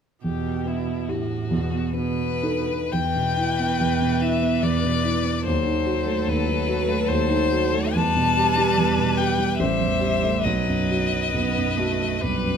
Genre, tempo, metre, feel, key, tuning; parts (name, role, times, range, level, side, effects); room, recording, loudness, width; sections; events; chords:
classical, slow romantic movement for piano quartet; 56-74 BPM; 3/4; rubato; E minor; A4 = 440 Hz
rich violin; melody; 0.2-12.6 s; E4 to A5; -25 LUFS; left 6 dB
rich cello; second line; 0.2-12.6 s; A2 to B3; -29 LUFS; right 8 dB
dark concert grand piano; accompaniment; 0.2-12.6 s; A1 to A4; -23 LUFS; right 1 dB
rich violin; second line; 2.9-12.6 s; A4 to C5; -31 LUFS; left 1 dB
moderate recital hall reverb, RT60 1.6 s; minimal, uncompressed stereo recording; -20 LUFS; side -7 dB against mid
0.2-2.9 A section; 2.9-12.6 B section
0.2 Em; 1.5 B7/E; 2.9 Em; 5.5 D#dim7; 8.0 Em; 9.6 Am7; 10.4 B